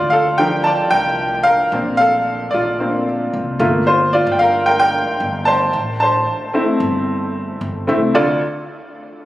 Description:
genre	piano-driven pop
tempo	112 BPM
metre	4/4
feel	straight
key	D minor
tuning	A4 = 441 Hz
part	bright upright piano	accompaniment	0.0-8.4 s	D2 to A5	-15 LUFS	equal	none
part	upright bass	bass	0.0-8.4 s	G1 to D2	-26 LUFS	equal	none
room	light reverb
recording	recorded on a phone in the room, club reverb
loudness	-14 LUFS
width	side -15 dB against mid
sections	0.0-8.2 A section; 8.2-9.3 B section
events	upright piano solo 0.0-8.2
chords	0.0 Dm; 1.7 Bbadd9; 3.6 Gm7; 5.7 Am; 8.2 Dm

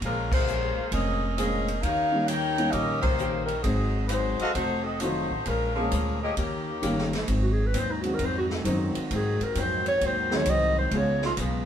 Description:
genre	jazz, big band swing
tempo	132 BPM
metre	4/4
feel	swing 66% on 8ths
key	Ab mixolydian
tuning	A4 = 441 Hz
part	clear saxophone section	melody	0.0-7.1 s	Eb3 to G5	-28 LUFS	left 2 dB	none
part	archtop guitar, miked and amplified	accompaniment	0.0-11.7 s	Ab2 to G4	-34 LUFS	left 3 dB	none
part	upright bass	bass	0.0-11.7 s	F1 to Ab2	-29 LUFS	equal	none
part	swinging big-band drum kit	drums	0.0-11.5 s	crash cymbal, hi-hat, kick drum, ride cymbal, snare drum	-33 LUFS	right 1 dB	none
part	dark baby grand piano	accompaniment	1.4-11.2 s	Eb3 to Ab4	-30 LUFS	equal	none
part	warm trumpet section	stabs	4.4-6.3 s	Gb4 to F5	-29 LUFS	left 1 dB	none
part	mellow saxophone section	sustained chords	7.3-11.7 s	Db3 to Gb4	-39 LUFS	right 2 dB	none
part	clear clarinet	melody	7.4-11.3 s	Eb4 to Eb5	-27 LUFS	equal	none
room	wet small room ambience, RT60 0.5 s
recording	band playing live in one room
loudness	-24 LUFS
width	side -9 dB against mid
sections	0.0-7.3 A section; 7.3-11.7 B section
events	band accent 0.2, 3.0; clarinet solo 7.3-11.7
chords	0.0 Bbm7; 1.8 Eb7; 3.6 Ab7; 4.6 F7b9; 5.5 Bbm7; 6.4 Eb7; 7.3 Ab7; 10.9 Db7

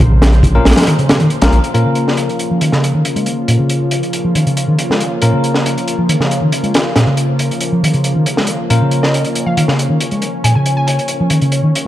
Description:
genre	breakbeat, breaks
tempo	138 BPM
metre	4/4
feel	straight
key	Bb minor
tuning	A4 = 437 Hz
part	lush unison pad	sustained chords	0.0-11.9 s	Db3 to C5	-20 LUFS	equal	chorus, vintage 12-bit sampler grit, sidechain pumping
part	hollow-body short-scale picked electric bass	riff	0.0-11.7 s	Bb2 to Ab3	-15 LUFS	equal	vintage 12-bit sampler grit, low-pass filter, digital delay
part	saturated sub bass	bass	0.0-1.6 s	Bb1	-11 LUFS	equal	none
part	crunchy breakbeat drum kit	drums	0.0-11.9 s	hi-hat, kick drum, snare drum	-16 LUFS	equal	high-pass filter on kick, high-pass filter on hats, high-pass filter on snare, high-pass filter on room
part	bell-like tine electric piano	stabs	0.6-11.9 s	Bb3 to Bb4	-22 LUFS	left 3 dB	low-pass filter, digital delay
part	glassy wavetable pluck	melody	9.0-10.9 s	Eb5 to Ab5	-22 LUFS	left 1 dB	chorus, small speaker sound, digital delay
room	light reverb, studio ambience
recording	dark, warm production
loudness	-11 LUFS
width	side -13 dB against mid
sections	0.0-1.7 A section; 1.7-11.9 B section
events	break 0.9-1.7; filter sweep on picked electric bass 1.7-11.9; filter sweep on tine electric piano 1.7-11.9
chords	0.0 Bbm

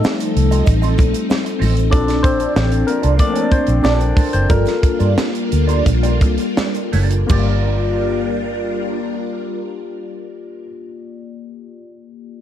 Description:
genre	lush 1970s-style soul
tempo	81-95 BPM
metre	4/4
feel	straight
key	G minor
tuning	A4 = 442 Hz
part	barky tine electric piano	accompaniment	0.0-12.4 s	G3 to D5	-21 LUFS	left 4 dB	overdrive, phaser
part	phased string machine	sustained chords	0.0-10.7 s	F3 to Bb4	-24 LUFS	left 1 dB	ensemble chorus, phaser
part	mellow electric guitar	riff	0.0-10.8 s	Bb3 to Eb5	-26 LUFS	right 8 dB	wah, lush chorus
part	tight funk drum kit	drums	0.0-7.5 s	crash cymbal, hi-hat, kick drum, snare drum	-18 LUFS	equal	none
part	egg shaker	percussion	0.0-7.6 s	none	-45 LUFS	left 11 dB	none
part	congas	percussion	0.1-7.7 s	none	-27 LUFS	right 4 dB	none
part	vintage muted fingered electric bass	bass	0.4-10.7 s	F#1 to G2	-17 LUFS	equal	none
room	small room ambience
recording	dark, warm production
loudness	-14 LUFS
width	side -10 dB against mid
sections	0.0-7.3 A section; 7.3-10.3 B section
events	tine electric piano solo 0.0-7.3; slowing down 1.9-7.3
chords	0.0 F7; 1.9 Bbmaj7; 4.5 Gm7

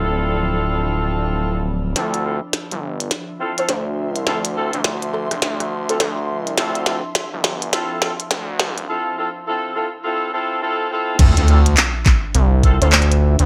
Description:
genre	glitch hop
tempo	104 BPM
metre	4/4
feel	swing 62% on 16ths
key	D dorian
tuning	A4 = 440 Hz
part	mellow horn section	stabs	0.0-12.9 s	C4 to A4	-26 LUFS	equal	vintage 12-bit sampler grit, sidechain pumping, low-pass filter, digital delay
part	gritty driven synth bass	bass	0.0-13.5 s	D1 to D2	-21 LUFS	equal	high-pass filter
part	ethereal airy pad	texture	0.0-13.5 s	F3 to C6	-33 LUFS	equal	ensemble chorus, built-in reverb, sidechain pumping
part	glitchy drum kit	drums	2.0-13.5 s	crash cymbal, handclaps, hi-hat, rim click, snare drum	-22 LUFS	equal	studio reverb, gated reverb
part	woody wave-folded pluck	melody	3.6-6.1, 12.8-13.0 s	A4 to C5	-29 LUFS	equal	ensemble chorus, digital delay
part	electronic kick drum	drums	11.2-12.8 s	none	-15 LUFS	equal	studio reverb
part	sub drop	sound effects	11.3-13.5 s	none	-24 LUFS	equal	none
room	light reverb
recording	bright 1980s-style digital production, high-pass filter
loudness	-19 LUFS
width	mono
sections	0.0-2.0 A section; 2.0-11.2 B section; 11.2-13.5 C section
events	filter sweep on horn section 0.0-2.0; build-up 2.0-11.2; drum fill 2.0-8.9; drop 11.2-13.5; impact 11.2-13.5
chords	0.0 Dm9

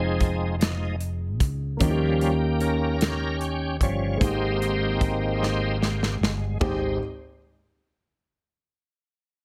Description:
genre	slow gospel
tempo	50 BPM (dotted quarters)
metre	6/8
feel	straight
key	Ab major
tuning	A4 = 439 Hz
part	dark concert grand piano	accompaniment	0.0-7.0 s	Ab1 to Ab4	-32 LUFS	equal	none
part	bright tonewheel organ	sustained chords	0.0-7.0 s	F3 to Db5	-30 LUFS	equal	slow rotary speaker, overdrive, chorus vibrato
part	fretless electric bass	bass	0.0-7.0 s	F1 to Eb2	-30 LUFS	equal	none
part	natural country drum kit	drums	0.2-6.8 s	hi-hat, kick drum, ride cymbal, snare drum, toms	-28 LUFS	equal	none
room	light reverb, small room ambience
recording	none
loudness	-25 LUFS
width	mono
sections	0.0-6.6 A section; 6.6-9.0 B section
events	tonewheel organ solo 0.0-6.6; drum fill 5.4-6.6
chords	0.0 Fm7; 1.8 Eb7; 4.2 Abmaj7

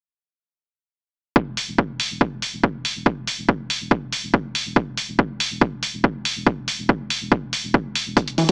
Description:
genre	driving peak-time techno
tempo	141 BPM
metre	4/4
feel	straight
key	unclear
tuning	A4 = 440 Hz
part	electronic kick drum	drums	1.4-8.3 s	none	-22 LUFS	equal	overdrive
part	warm sub bass	bass	1.5-8.5 s	E1	-39 LUFS	equal	sidechain pumping, low-pass filter
part	electronic hi-hat	drums	1.6-8.5 s	none	-28 LUFS	equal	overdrive, sidechain pumping on hats
part	tight sequenced synth	riff	8.4-8.5 s	E3	-17 LUFS	equal	chorus, overdrive, sidechain pumping
room	little or no reverb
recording	small speaker sound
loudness	-22 LUFS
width	mono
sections	1.4-8.5 A section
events	none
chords	1.4 E5

